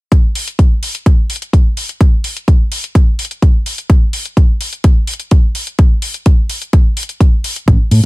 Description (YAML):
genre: filtered disco house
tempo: 127 BPM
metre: 4/4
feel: straight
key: unclear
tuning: A4 = 441 Hz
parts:
  - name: electronic hi-hat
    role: drums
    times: 0.1-8.0 s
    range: none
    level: -22 LUFS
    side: left 2 dB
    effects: sidechain pumping on hats, small room ambience
  - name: electronic kick drum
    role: drums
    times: 0.1-7.8 s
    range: none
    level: -9 LUFS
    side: equal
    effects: small room ambience
  - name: hollow-body short-scale fingered electric bass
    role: bass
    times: 7.7-8.0 s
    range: A1 to A2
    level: -9 LUFS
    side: equal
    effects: sidechain pumping, low-pass filter
room: digital ambience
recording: none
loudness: -11 LUFS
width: side -21 dB against mid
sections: 0.1-8.1 A section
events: none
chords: none